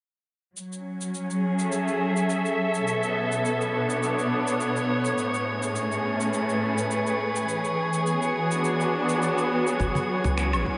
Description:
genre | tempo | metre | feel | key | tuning
organic downtempo | 104 BPM | 4/4 | swing 55% on 16ths | F# minor | A4 = 441 Hz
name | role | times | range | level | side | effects
warm symphonic string section | sustained chords | 0.6-10.8 s | A2 to E5 | -27 LUFS | equal | sidechain pumping, low-pass filter
electronic shaker, finger snaps and woodblock | drums | 0.6-10.6 s | none | -37 LUFS | equal | none
drifting glass-harmonics texture | texture | 1.2-10.8 s | C#5 | -35 LUFS | equal | chorus, built-in reverb
warm sub bass | bass | 9.8-10.6 s | F#1 to C#2 | -29 LUFS | equal | none
electronic kick drum | drums | 9.8-10.8 s | none | -32 LUFS | equal | none
cajon | percussion | 10.0-10.1 s | none | -33 LUFS | equal | none
room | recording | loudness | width
wet huge ambient reverb, RT60 8.6 s | dreamy mix soaked in reverb, nothing above 10.4 kHz | -26 LUFS | mono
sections
0.6-10.8 A section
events
none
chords
0.6 F#m7; 2.9 Bm7; 5.2 Amaj7; 7.5 E7; 9.8 F#7(no3)

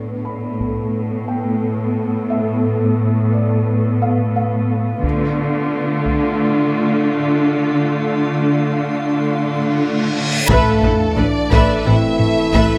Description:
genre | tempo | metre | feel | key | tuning
cinematic, hybrid orchestral and electronic film score | 88 BPM | 4/4 | straight | unclear | A4 = 439 Hz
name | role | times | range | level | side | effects
clear symphonic viola section | accompaniment | 0.0-12.8 s | A3 to B4 | -26 LUFS | equal | low-pass filter
granular cloud pad | sustained chords | 0.0-12.8 s | A3 to F5 | -25 LUFS | equal | built-in reverb, low-pass filter
rich symphonic cello section | bass | 0.0-12.6 s | A2 to D3 | -21 LUFS | equal | none
felt-muted upright piano | texture | 0.2-12.8 s | C4 to B5 | -31 LUFS | equal | delay
taiko ensemble | drums | 0.6-0.9, 5.0-6.4, 10.5-12.8 s | none | -23 LUFS | equal | none
reverse cymbal and sub drop | sound effects | 9.8-12.8 s | none | -26 LUFS | equal | none
clear symphonic violin section | melody | 10.5-12.8 s | A4 to E5 | -27 LUFS | equal | low-pass filter
rich symphonic violin section | second line | 10.5-12.8 s | E4 to E5 | -25 LUFS | equal | none
bright trombone section | sustained chords | 10.5-12.8 s | E3 to A3 | -27 LUFS | equal | low-pass filter
mellow French horn section | sustained chords | 10.5-12.8 s | A3 to E4 | -22 LUFS | equal | low-pass filter
rich symphonic double bass section | bass | 10.5-12.6 s | A1 | -22 LUFS | equal | none
room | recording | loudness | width
light reverb | close, detailed microphones | -17 LUFS | mono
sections
0.0-10.5 A section; 10.5-12.8 B section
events
filter sweep 0.0-10.5; reverse cymbal 9.8-10.5; impact 10.5-12.8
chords
0.0 Asus2; 5.0 Dm; 10.5 Asus2

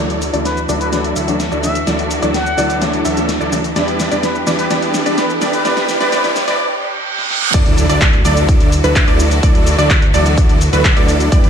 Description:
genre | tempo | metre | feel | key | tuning
EDM, festival progressive house | 127 BPM | 4/4 | straight | D major | A4 = 445 Hz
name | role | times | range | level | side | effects
felt-muted upright piano | accompaniment | 0.0-6.6 s | E3 to D4 | -22 LUFS | left 1 dB | sidechain pumping, digital delay
warm studio string section | sustained chords | 0.0-11.5 s | E3 to G4 | -24 LUFS | equal | sidechain pumping
wide unison pluck | arpeggios | 0.0-11.5 s | B4 to E5 | -22 LUFS | right 2 dB | sidechain pumping, digital delay
supersaw chords | riff | 0.0-11.5 s | F#3 to E5 | -19 LUFS | equal | sidechain pumping, low-pass filter, digital delay
fat analog bass | bass | 0.0-11.5 s | D2 to E2 | -19 LUFS | equal | sidechain pumping
riser, reverse cymbal and impact | sound effects | 0.0-9.4 s | none | -23 LUFS | right 2 dB | none
big-room dance drum kit | drums | 0.1-11.5 s | crash cymbal, handclaps, hi-hat, shaker, snare drum | -21 LUFS | left 1 dB | studio reverb
trumpet with plunger mute | melody | 0.5-6.6 s | B4 to F#5 | -22 LUFS | left 1 dB | digital delay
electronic kick drum | drums | 7.5-11.4 s | none | -12 LUFS | equal | studio reverb
room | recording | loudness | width
moderate digital room reverb, RT60 1.1 s, digital ambience | dark, warm production, high-pass filter | -12 LUFS | side -8 dB against mid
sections
0.0-7.5 A section; 7.5-11.5 B section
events
build-up 0.0-7.5; drum fill 0.0-6.6, 7.2-7.5; filter sweep on supersaw synth 0.0-7.5; filter sweep on synth pluck 0.0-7.5; filter sweep 0.0-7.5; break 6.6-7.5; reverse cymbal 6.6-7.5; drop 7.5-11.5; impact 7.5-9.4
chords
0.0 Dadd9; 3.8 Em7; 7.5 Dadd9

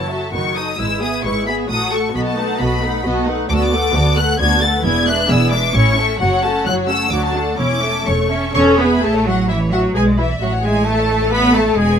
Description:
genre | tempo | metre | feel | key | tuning
quick classical-period movement for string orchestra | 132 BPM | 3/4 | rubato | A major from 3.5 s | A4 = 440 Hz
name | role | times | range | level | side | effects
rich symphonic violin section | melody | 0.0-12.0 s | G#4 to A6 | -21 LUFS | left 3 dB | none
warm symphonic violin section | second line | 0.0-12.0 s | F#4 to C#6 | -22 LUFS | equal | none
clear symphonic viola section | accompaniment | 0.0-12.0 s | D#3 to C#5 | -20 LUFS | equal | none
rich studio double bass section | bass | 0.0-12.0 s | E1 to D2 | -21 LUFS | right 1 dB | none
rich symphonic cello section | bass | 0.0-12.0 s | D2 to C#4 | -20 LUFS | right 1 dB | none
room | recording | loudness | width
light reverb | none | -14 LUFS | side -8 dB against mid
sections
0.0-9.0 A section; 9.0-12.0 B section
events
none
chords
0.3 B7/F#; 0.8 E/G#; 1.7 F#m/A; 2.2 B7; 3.5 Bm7/D; 4.8 E7; 5.8 A; 6.2 F#m; 7.1 D; 7.6 A/E; 8.6 E; 9.0 A; 10.0 G#dim/B; 10.4 A

